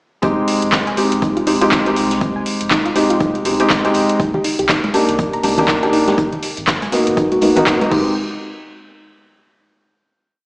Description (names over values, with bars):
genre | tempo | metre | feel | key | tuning
deep house | 121 BPM | 4/4 | swing 59% on 16ths | F minor | A4 = 439 Hz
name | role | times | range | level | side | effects
soft round pluck | arpeggios | 0.2-8.1 s | Eb4 to Bb5 | -21 LUFS | equal | chorus, sidechain pumping, digital delay
felt-muted upright piano | stabs | 0.2-8.1 s | Ab3 to G4 | -16 LUFS | equal | sidechain pumping, digital delay
sub bass with octave | bass | 0.2-8.1 s | Eb1 to C2 | -33 LUFS | equal | sidechain pumping
electronic kick drum | drums | 0.2-8.0 s | none | -22 LUFS | equal | none
vintage brush drum kit | drums | 0.2-7.9 s | hi-hat, snare drum | -28 LUFS | equal | none
deep house drum kit | drums | 0.5-8.0 s | crash cymbal, handclaps, hi-hat | -21 LUFS | equal | overdrive
congas | percussion | 4.3-7.9 s | none | -26 LUFS | equal | none
room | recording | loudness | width
moderate lush hall reverb, RT60 1.8 s, small room reverb | played on a big sound system in a bare room, stone room reverb, small speaker sound | -13 LUFS | side -32 dB against mid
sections
0.2-8.2 drop; 8.2-10.1 final hit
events
drop 0.2-8.2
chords
0.2 Fm7; 4.2 Cm7; 6.2 Abm7; 7.9 Fm7; 8.2 N.C.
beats
| 0.23 0.72 1.22 1.72 | 2.21 2.71 3.21 3.70 | 4.20 4.69 5.19 5.68 | 6.18 6.68 7.17 7.67